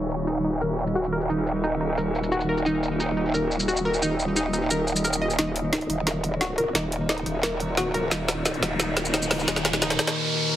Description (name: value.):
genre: dark technical drum and bass.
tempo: 176 BPM.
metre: 4/4.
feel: straight.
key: unclear.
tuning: A4 = 439 Hz.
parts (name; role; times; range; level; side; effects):
metallic inharmonic drone; sustained chords; 0.0-10.6 s; Bb2 to Eb5; -30 LUFS; left 1 dB; chorus, built-in reverb.
analog pluck; arpeggios; 0.0-10.0 s; Eb4 to Eb5; -28 LUFS; equal; chorus, digital delay.
growl bass; bass; 0.0-10.0 s; Eb1; -26 LUFS; equal; chorus, tube saturation.
drum and bass drum kit; drums; 0.1-10.1 s; hi-hat, shaker, snare drum; -26 LUFS; equal; overdrive, small room ambience.
riser; sound effects; 7.4-10.6 s; none; -31 LUFS; right 1 dB; none.
room: light reverb, digital ambience.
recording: heavily compressed radio sound, multiband compression, low-pass filter.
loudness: -22 LUFS.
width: side -12 dB against mid.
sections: 0.0-5.4 A section; 5.4-10.6 B section.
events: filter sweep on synth arpeggio sound 0.0-5.4, 5.4-10.6; filter sweep 0.0-5.4; build-up 5.4-10.6; drum fill 5.4-10.2; riser 7.4-10.6.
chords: 0.0 Eb5.